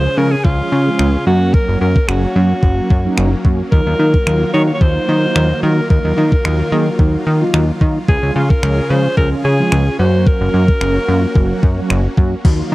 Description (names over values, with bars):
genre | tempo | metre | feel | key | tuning
dance-pop | 110 BPM | 4/4 | straight | unclear | A4 = 440 Hz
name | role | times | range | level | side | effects
bright alto saxophone | melody | 0.0-11.9 s | F4 to Db5 | -19 LUFS | equal | slapback echo
mellow synth brass | accompaniment | 0.0-12.7 s | F3 to Ab4 | -21 LUFS | right 2 dB | chorus, sidechain pumping
supersaw chords | sustained chords | 0.0-12.7 s | Db3 to F5 | -24 LUFS | equal | sidechain pumping
plucky analog bass | bass | 0.0-12.7 s | Gb1 to Eb3 | -15 LUFS | equal | sidechain pumping
crisp 8-bit digital drum machine | drums | 0.4-12.6 s | crash cymbal, finger snaps, kick drum | -13 LUFS | equal | overdrive
soft round pluck | arpeggios | 12.4-12.7 s | F4 to Gb4 | -26 LUFS | left 12 dB | chorus, sidechain pumping, slapback echo
room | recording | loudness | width
little or no reverb | dry, close 1970s-style studio recording | -12 LUFS | side -18 dB against mid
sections
0.0-12.4 A section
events
none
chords
0.0 Db; 1.3 Gb; 3.7 Ebmadd9; 8.1 Db; 10.0 Gb